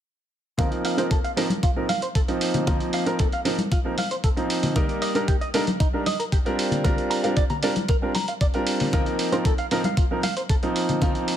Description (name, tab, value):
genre	nu-disco, nu disco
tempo	115 BPM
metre	4/4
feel	straight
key	unclear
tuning	A4 = 441 Hz
part	warm concert grand piano	accompaniment	0.6-11.4 s	F3 to D5	-25 LUFS	right 1 dB	sidechain pumping, low-pass filter, digital delay
part	direct-recorded clean electric guitar	riff	0.6-11.1 s	Eb4 to Bb5	-30 LUFS	right 2 dB	lush chorus, low-pass filter, digital delay
part	electronic hi-hat	drums	0.6-11.4 s	none	-32 LUFS	right 2 dB	none
part	electronic kick drum	drums	0.6-11.1 s	none	-23 LUFS	equal	none
part	congas	percussion	0.6-11.1 s	none	-29 LUFS	left 2 dB	none
room	light reverb, digital ambience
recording	none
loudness	-21 LUFS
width	side -10 dB against mid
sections	0.6-11.4 A section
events	none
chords	0.6 F7sus4; 4.8 Ebmaj7; 6.6 Bb69; 8.9 F7sus4